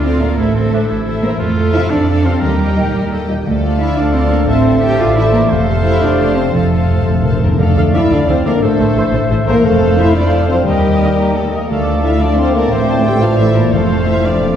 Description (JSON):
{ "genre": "cinematic", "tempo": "117 BPM (dotted quarters)", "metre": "6/8", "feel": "straight", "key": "F major", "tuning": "A4 = 440 Hz", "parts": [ { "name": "rich symphonic violin section", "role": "melody", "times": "0.0-14.6 s", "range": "F4 to G5", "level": "-27 LUFS", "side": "left 4 dB", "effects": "none" }, { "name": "clear oboe", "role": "second line", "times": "0.0-14.6 s", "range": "C4 to F5", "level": "-26 LUFS", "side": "equal", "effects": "none" }, { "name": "rich symphonic violin section", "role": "second line", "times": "0.0-14.6 s", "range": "G4 to A5", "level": "-27 LUFS", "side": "left 3 dB", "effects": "none" }, { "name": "warm symphonic viola section", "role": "accompaniment", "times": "0.0-14.6 s", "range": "Bb3 to A5", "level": "-24 LUFS", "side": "equal", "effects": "none" }, { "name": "concert harp", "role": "arpeggios", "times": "0.0-14.6 s", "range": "F2 to C5", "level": "-21 LUFS", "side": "left 4 dB", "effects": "none" }, { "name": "clear symphonic double bass section", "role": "bass", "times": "0.0-14.6 s", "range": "F1 to F2", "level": "-18 LUFS", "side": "right 2 dB", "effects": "none" }, { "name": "warm symphonic cello section", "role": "bass", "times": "0.0-14.6 s", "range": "D2 to G4", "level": "-18 LUFS", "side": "right 2 dB", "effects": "none" }, { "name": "dark French horn section", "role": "sustained chords", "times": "0.2-14.6 s", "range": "G3 to Eb5", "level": "-18 LUFS", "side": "left 1 dB", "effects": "none" }, { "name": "warm trombone section", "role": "sustained chords", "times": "0.2-14.6 s", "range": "A2 to C4", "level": "-24 LUFS", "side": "right 1 dB", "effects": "none" }, { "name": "mellow trumpet section", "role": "stabs", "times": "0.2-14.6 s", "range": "C5 to G5", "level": "-24 LUFS", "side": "right 1 dB", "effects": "none" }, { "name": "timpani", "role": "percussion", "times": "6.5-7.5, 9.6-10.1, 13.7-14.2 s", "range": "F2", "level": "-19 LUFS", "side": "equal", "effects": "none" }, { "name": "warm clarinet", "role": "second line", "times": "7.1-14.6 s", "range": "A4 to D5", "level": "-24 LUFS", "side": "left 2 dB", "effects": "none" }, { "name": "mellow hollow concert flute", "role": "second line", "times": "7.6-14.5 s", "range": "A4 to Bb5", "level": "-24 LUFS", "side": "left 1 dB", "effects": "none" } ], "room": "wet scoring stage reverb, RT60 1.8 s", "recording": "heard from further back in the room", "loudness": "-11 LUFS", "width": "side -9 dB against mid", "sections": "0.0-7.6 A section; 7.6-14.6 A section", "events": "timpani fill 6.5-7.6", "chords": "0.4 Am; 1.4 F; 2.4 Eb; 3.5 Dm; 4.5 Am; 5.5 F; 7.6 Dm; 8.6 Am; 9.6 F; 10.7 Eb; 11.7 Dm; 12.7 Am; 13.7 F", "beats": "| 0.37 0.88 | 1.39 1.90 | 2.42 2.94 | 3.46 3.97 | 4.49 5.00 | 5.50 6.01 | 6.54 7.06 | 7.59 8.10 | 8.61 9.12 | 9.63 10.14 | 10.65 11.17 | 11.69 12.21 | 12.71 13.22 | 13.72 14.24" }